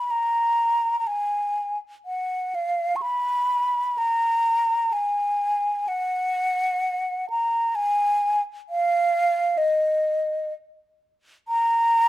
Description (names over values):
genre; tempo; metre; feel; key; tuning
classical, free, expressive piece for unaccompanied flute; 63 BPM; 4/4; uneven beats, rubato; unclear; A4 = 436 Hz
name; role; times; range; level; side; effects
mellow hollow concert flute; solo; 0.0-12.1 s; Eb5 to Db6; -21 LUFS; equal; none
room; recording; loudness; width
light reverb; close, detailed microphones; -21 LUFS; side -15 dB against mid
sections
0.0-12.1 A section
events
none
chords
none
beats
| 0.10 1.07 2.05 3.02 | 3.98 4.93 5.88 6.84 | 7.76 8.69 9.59 10.54 | 11.48